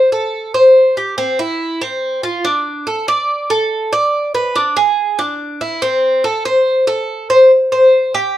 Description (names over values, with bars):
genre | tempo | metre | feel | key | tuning
latin | 142 BPM | 4/4 | straight | A minor | A4 = 440 Hz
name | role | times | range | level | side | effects
Cuban tres | solo | 0.0-8.4 s | C4 to D5 | -12 LUFS | equal | none
room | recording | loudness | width
moderate studio reverb, RT60 0.6 s | none | -12 LUFS | side -13 dB against mid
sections
0.0-7.5 A section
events
none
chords
none